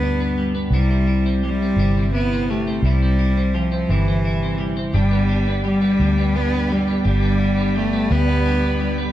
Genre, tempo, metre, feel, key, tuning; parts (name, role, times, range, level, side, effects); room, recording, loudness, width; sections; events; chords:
six-eight pop ballad; 57 BPM (dotted quarters); 6/8; straight; A4 = 440 Hz
rich cello; melody; 0.0-8.9 s; E3 to B3; -21 LUFS; equal; digital delay
twelve-string electric guitar; accompaniment; 0.0-9.1 s; G2 to E4; -24 LUFS; equal; double-tracked left and right
vintage muted fingered electric bass; bass; 0.0-9.1 s; G1 to D2; -20 LUFS; equal
tonewheel organ; sustained chords; 4.9-9.1 s; G4 to B5; -30 LUFS; equal; slow rotary speaker
moderate recital hall reverb, RT60 1.5 s, digital ambience; dark, warm production; -17 LUFS; side -13 dB against mid
0.0-9.1 A section
0.0 G; 0.7 C; 4.9 G